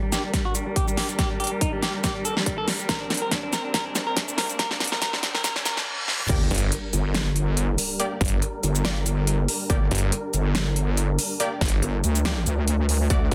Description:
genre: heavy wobble dubstep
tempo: 141 BPM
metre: 4/4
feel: swing 55% on 16ths, half-time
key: G minor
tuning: A4 = 436 Hz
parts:
  - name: clean electric guitar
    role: melody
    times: 0.0-5.8 s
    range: G3 to Bb4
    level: -31 LUFS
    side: equal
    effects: vintage 12-bit sampler grit, low-pass filter, tape echo
  - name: supersaw chords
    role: sustained chords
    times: 0.0-13.3 s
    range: G3 to F#5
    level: -36 LUFS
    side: equal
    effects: sidechain pumping, low-pass filter
  - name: riser, reverse cymbal and sub drop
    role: sound effects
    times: 2.3-8.0 s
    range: none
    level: -37 LUFS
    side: equal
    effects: none
  - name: big-room dance drum kit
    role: drums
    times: 0.1-13.3 s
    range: crash cymbal, hi-hat, shaker, snare drum, toms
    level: -29 LUFS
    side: equal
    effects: none
  - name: electronic kick drum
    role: drums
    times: 0.3-13.2 s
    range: none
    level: -28 LUFS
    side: equal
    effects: none
  - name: orchestra-hit-like synth stab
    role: stabs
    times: 6.3-13.2 s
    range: A3 to D5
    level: -34 LUFS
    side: equal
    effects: built-in reverb, tape echo
  - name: wobble bass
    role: bass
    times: 6.3-13.3 s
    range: G1 to D2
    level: -25 LUFS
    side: equal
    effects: chorus, overdrive
  - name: snarling distorted saw bass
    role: bass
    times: 6.5-13.3 s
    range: G1 to D2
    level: -26 LUFS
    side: equal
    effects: overdrive
room: light reverb, digital ambience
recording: dense, heavily limited modern master, high-pass filter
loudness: -24 LUFS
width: mono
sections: 0.0-6.3 A section; 6.3-13.3 B section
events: build-up 0.0-6.3; drum fill 0.0-5.9, 6.1; filter sweep on supersaw synth 0.0-6.3; filter sweep on clean electric guitar 0.0-6.3; filter sweep 0.0-6.3; reverse cymbal 5.4-6.3; drop 6.3-13.3; impact 6.3-8.0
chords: 0.0 Gm

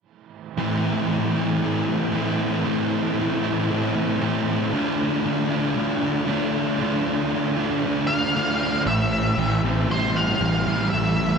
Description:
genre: rock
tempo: 116 BPM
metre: 4/4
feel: straight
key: A minor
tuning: A4 = 442 Hz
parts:
  - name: overdriven electric guitar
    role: riff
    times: 0.6-11.4 s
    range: A2 to F4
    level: -24 LUFS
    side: right 9 dB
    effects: reverse reverb
  - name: thick fuzz guitar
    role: riff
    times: 0.6-11.4 s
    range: A2 to E4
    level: -24 LUFS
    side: left 8 dB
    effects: distortion, lush chorus
  - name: octave-fuzz lead guitar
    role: melody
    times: 8.1-11.4 s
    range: C5 to F5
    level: -24 LUFS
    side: left 1 dB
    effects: distortion, digital delay
  - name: fuzz picked electric bass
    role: bass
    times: 8.9-11.4 s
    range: A1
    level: -24 LUFS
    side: equal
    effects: overdrive
room: moderate huge ambient reverb, RT60 4.0 s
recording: none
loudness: -20 LUFS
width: side -6 dB against mid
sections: 0.6-8.9 A section; 8.9-11.4 B section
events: none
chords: 0.6 Am; 4.7 Dm; 8.9 Am7

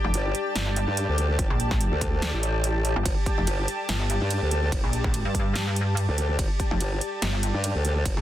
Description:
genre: heavy wobble dubstep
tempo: 144 BPM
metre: 4/4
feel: swing 55% on 16ths, half-time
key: G minor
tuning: A4 = 442 Hz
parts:
  - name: pulsing pluck wobble bass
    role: bass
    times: 0.0-8.2 s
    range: F1 to G2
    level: -26 LUFS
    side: equal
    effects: chorus, overdrive
  - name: granular cloud pad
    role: texture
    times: 0.0-8.2 s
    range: G4 to A5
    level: -30 LUFS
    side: left 1 dB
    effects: built-in reverb, sidechain pumping
  - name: formant-sweep wobble bass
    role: bass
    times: 0.1-8.2 s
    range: G1 to G2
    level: -25 LUFS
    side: equal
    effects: chorus, overdrive
  - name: big-room dance drum kit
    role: drums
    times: 0.1-8.1 s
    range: hi-hat, ride cymbal, snare drum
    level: -32 LUFS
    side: right 2 dB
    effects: none
  - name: electronic kick drum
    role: drums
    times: 1.4-8.1 s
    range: none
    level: -26 LUFS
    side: equal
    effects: none
room: light reverb, digital ambience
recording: dense, heavily limited modern master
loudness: -23 LUFS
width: side -13 dB against mid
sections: 0.0-8.2 A section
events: none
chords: 0.0 Gsus2

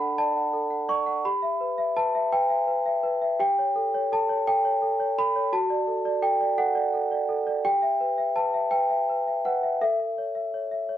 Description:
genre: classical, lullaby for celesta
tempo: 56 BPM (dotted quarters)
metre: 6/8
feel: straight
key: D major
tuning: A4 = 444 Hz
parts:
  - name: large celesta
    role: solo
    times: 0.0-11.0 s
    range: D4 to C#6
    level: -23 LUFS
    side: equal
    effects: none
room: light reverb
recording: worn, warbling old tape, cassette tape, warbly pitch drift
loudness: -22 LUFS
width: side -11 dB against mid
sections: 0.0-11.0 A section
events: none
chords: 0.0 D; 1.2 Em/G; 3.4 A7/G; 5.5 D/F#; 7.6 Em/G; 9.8 A

